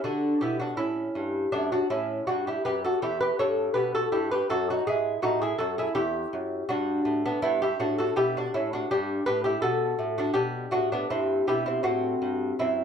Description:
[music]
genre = classical, baroque-style dance for lute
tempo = 81 BPM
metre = 4/4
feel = rubato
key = G major from 8.9 s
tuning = A4 = 440 Hz
[part]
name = lute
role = solo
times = 0.0-12.8 s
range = E2 to C#5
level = -24 LUFS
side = equal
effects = none
[sound]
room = light reverb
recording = none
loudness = -24 LUFS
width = side -7 dB against mid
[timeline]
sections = 0.0-12.8 A section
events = none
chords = 0.0 D; 3.0 Em; 4.5 D#dim/F#; 6.0 Em; 8.9 G; 11.9 F#dim

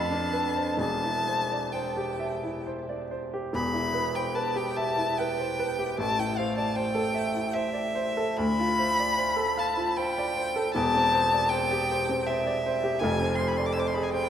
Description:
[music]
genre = classical, romantic duo for violin and grand piano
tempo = 63-81 BPM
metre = 3/4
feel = rubato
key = C major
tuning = A4 = 440 Hz
[part]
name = rich violin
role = melody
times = 0.0-14.3 s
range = E5 to E6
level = -28 LUFS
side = left 2 dB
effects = none
[part]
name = clear grand piano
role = accompaniment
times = 0.0-14.3 s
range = E1 to F5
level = -28 LUFS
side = right 1 dB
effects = none
[sound]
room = wet cathedral reverb, RT60 5.1 s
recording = in a vast, echoing space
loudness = -25 LUFS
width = side -9 dB against mid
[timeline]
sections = 0.0-3.5 A section; 3.5-14.3 A section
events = none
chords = 0.0 F6; 0.8 C/E; 3.5 Em; 6.0 Am7; 8.4 Dm7; 10.7 C/E; 13.0 Fm

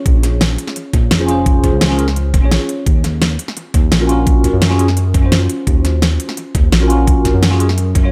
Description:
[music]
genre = liquid drum and bass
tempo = 171 BPM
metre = 4/4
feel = straight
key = unclear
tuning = A4 = 440 Hz
[part]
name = bell-like tine electric piano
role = accompaniment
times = 0.0-8.1 s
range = Db4 to Db5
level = -21 LUFS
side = equal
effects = phaser, analog delay
[part]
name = smooth synth bass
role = bass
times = 0.1-8.1 s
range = F1 to Gb2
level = -18 LUFS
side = equal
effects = none
[part]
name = electronic kick drum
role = drums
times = 0.1-8.0 s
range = none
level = -16 LUFS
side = equal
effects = studio reverb
[part]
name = pop drum kit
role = drums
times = 0.1-8.0 s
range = hi-hat, snare drum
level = -20 LUFS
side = equal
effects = studio reverb, analog delay
[sound]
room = light reverb, digital ambience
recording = echo-heavy mix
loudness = -14 LUFS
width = mono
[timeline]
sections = 0.0-8.1 A section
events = none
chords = 0.0 Bbm9; 2.9 Ebm9

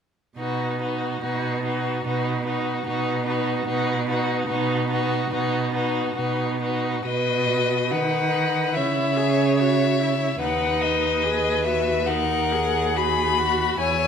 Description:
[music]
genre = classical, slow romantic movement for string quartet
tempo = 72 BPM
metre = 4/4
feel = rubato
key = B major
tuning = A4 = 442 Hz
[part]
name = rich violin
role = melody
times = 0.4-14.1 s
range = B4 to B5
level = -26 LUFS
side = left 8 dB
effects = none
[part]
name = rich violin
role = second line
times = 0.4-14.1 s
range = F#4 to C#5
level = -27 LUFS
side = left 2 dB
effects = none
[part]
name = rich viola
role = accompaniment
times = 0.4-14.1 s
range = D#4 to G#4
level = -28 LUFS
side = right 2 dB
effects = none
[part]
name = clear cello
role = bass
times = 0.4-14.1 s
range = D#2 to D#3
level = -26 LUFS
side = right 5 dB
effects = none
[sound]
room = moderate recital hall reverb, RT60 1.6 s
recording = none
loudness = -21 LUFS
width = side -7 dB against mid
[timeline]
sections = 0.4-7.1 A section; 7.1-14.1 B section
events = none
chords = 0.4 B; 8.8 C#madd11; 10.4 B/D#

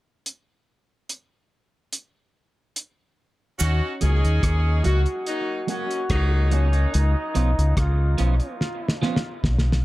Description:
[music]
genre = dub reggae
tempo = 72 BPM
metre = 4/4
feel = straight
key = Eb minor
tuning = A4 = 442 Hz
[part]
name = cloth-damped thuddy drum kit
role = drums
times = 0.3-9.8 s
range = hi-hat, kick drum, rim click, snare drum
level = -26 LUFS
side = equal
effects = none
[part]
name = clear trombone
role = melody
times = 3.6-8.6 s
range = Db4 to Gb4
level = -31 LUFS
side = equal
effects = low-pass filter, dub echo
[part]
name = clear horn section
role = second line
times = 3.6-6.7 s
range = Gb3 to Ab4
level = -30 LUFS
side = equal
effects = dub echo
[part]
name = deep dub fingered electric bass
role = bass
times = 3.6-9.8 s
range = Cb2 to Eb2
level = -19 LUFS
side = equal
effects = none
[part]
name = cabasa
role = percussion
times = 3.6-3.8 s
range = none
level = -29 LUFS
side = right 7 dB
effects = none
[part]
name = electric guitar at the edge of break-up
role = accompaniment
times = 4.0-9.2 s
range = F3 to Gb4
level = -32 LUFS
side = right 5 dB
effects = low-pass filter, dub echo
[sound]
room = light reverb, small room ambience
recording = echo-heavy mix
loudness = -20 LUFS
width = side -18 dB against mid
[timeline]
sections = 0.3-3.6 A section; 3.6-9.8 B section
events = part muted 3.6-9.8; filter sweep 3.6-9.8; drum fill 8.6-9.8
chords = 0.3 N.C.; 3.6 Ebm7; 6.9 Db7

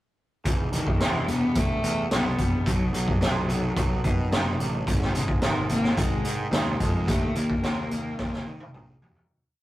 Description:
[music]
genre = quiet-loud alternative rock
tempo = 109 BPM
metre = 4/4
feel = straight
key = unclear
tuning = A4 = 440 Hz
[part]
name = twangy electric guitar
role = arpeggios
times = 0.5-9.3 s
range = G#2 to B3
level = -36 LUFS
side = right 1 dB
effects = none
[part]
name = fuzz picked electric bass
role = bass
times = 0.5-9.2 s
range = E1 to D#3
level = -29 LUFS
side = equal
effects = overdrive
[part]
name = raw garage drum kit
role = drums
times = 0.5-9.3 s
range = hi-hat, kick drum, snare drum, toms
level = -25 LUFS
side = equal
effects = none
[part]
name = rich cello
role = melody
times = 0.7-9.0 s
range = C#3 to B3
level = -29 LUFS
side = left 1 dB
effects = none
[sound]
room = light reverb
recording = rough rehearsal-room recording, tube saturation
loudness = -23 LUFS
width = side -15 dB against mid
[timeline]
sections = 0.5-9.3 verse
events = fade-out 7.1-9.3; drum fill 8.2-9.3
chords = 0.5 Em; 2.7 B; 4.9 G#m; 7.1 D#

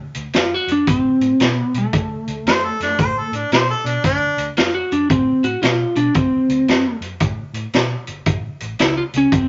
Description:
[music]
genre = electric blues shuffle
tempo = 114 BPM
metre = 4/4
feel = swing 64% on 8ths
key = D mixolydian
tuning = A4 = 437 Hz
[part]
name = vintage drum kit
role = drums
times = 0.1-9.5 s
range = hi-hat, kick drum, snare drum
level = -22 LUFS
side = equal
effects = none
[part]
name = vintage muted fingered electric bass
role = bass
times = 0.2-9.5 s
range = G1 to B2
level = -29 LUFS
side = equal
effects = none
[part]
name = lightly driven lead guitar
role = melody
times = 0.4-9.5 s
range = A3 to F#4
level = -20 LUFS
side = equal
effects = none
[part]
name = warm harmonica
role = second line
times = 2.5-4.5 s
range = D4 to C5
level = -21 LUFS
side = equal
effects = none
[sound]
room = moderate studio reverb, RT60 0.5 s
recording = nothing above 7.5 kHz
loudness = -18 LUFS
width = mono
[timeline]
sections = 0.0-9.5 A section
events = none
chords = 0.0 D7; 8.3 A

